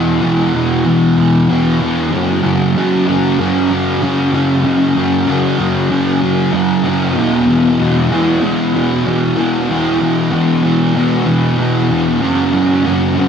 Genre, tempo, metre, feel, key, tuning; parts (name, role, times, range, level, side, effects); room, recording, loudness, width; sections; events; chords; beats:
rock; 95 BPM; 4/4; straight; A4 = 440 Hz
fuzz guitar; solo; 0.0-13.3 s; E2 to F#3; -12 LUFS; equal; distortion, lush chorus, ping-pong delay
wet huge ambient reverb, RT60 7.7 s; dreamy mix soaked in reverb; -12 LUFS; side -7 dB against mid
0.0-13.3 A section
0.0 E5; 2.1 F#5; 7.2 E5; 12.2 F#5
0.23 0.86 1.49 | 2.12 2.75 3.38 4.01 | 4.64 5.28 5.91 6.54 | 7.17 7.80 8.43 9.06 | 9.69 10.32 10.96 11.59 | 12.22 12.85